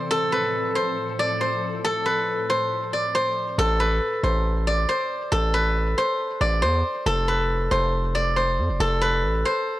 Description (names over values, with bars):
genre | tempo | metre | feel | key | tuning
hip hop, trap | 138 BPM | 4/4 | half-time | A minor | A4 = 442 Hz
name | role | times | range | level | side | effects
steel-string zither | melody | 0.0-9.8 s | A4 to D5 | -22 LUFS | equal | none
glassy FM pad | sustained chords | 0.0-3.5 s | A2 to A4 | -32 LUFS | equal | ensemble chorus, built-in reverb
distorted 808-style bass | bass | 3.6-9.4 s | F1 to F2 | -24 LUFS | equal | distortion
room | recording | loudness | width
small room ambience | dry, gritty hardware recording | -20 LUFS | side -16 dB against mid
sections
0.0-3.6 A section; 3.6-9.8 B section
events
none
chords
0.1 F; 3.6 Amadd9; 7.1 F